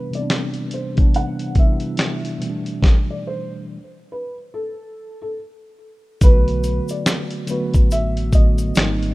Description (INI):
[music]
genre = lo-fi hip hop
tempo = 71 BPM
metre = 4/4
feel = swing 59% on 16ths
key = B phrygian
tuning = A4 = 439 Hz
[part]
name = felt-muted upright piano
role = melody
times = 0.0-9.1 s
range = A4 to F#5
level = -28 LUFS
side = right 1 dB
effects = low-pass filter
[part]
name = mellow tine electric piano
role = accompaniment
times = 0.0-9.1 s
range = B2 to F#4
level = -24 LUFS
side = equal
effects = medium stereo tremolo, low-pass filter
[part]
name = dusty soul sampler-style drum kit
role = drums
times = 0.1-9.1 s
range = finger snaps, hi-hat, kick drum, snare drum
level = -15 LUFS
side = equal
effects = vintage 12-bit sampler grit
[part]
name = sub bass with octave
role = bass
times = 6.2-9.1 s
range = G#1 to B1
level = -22 LUFS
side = equal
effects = none
[part]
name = egg shaker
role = percussion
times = 6.2-9.0 s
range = none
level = -39 LUFS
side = left 6 dB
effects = none
[sound]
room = digital ambience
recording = rough home demo mix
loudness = -16 LUFS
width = side -20 dB against mid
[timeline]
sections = 0.0-6.2 A section; 6.2-9.1 B section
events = stop 2.8-6.2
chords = 0.0 Cmaj7; 2.4 A9sus4; 6.2 Bm7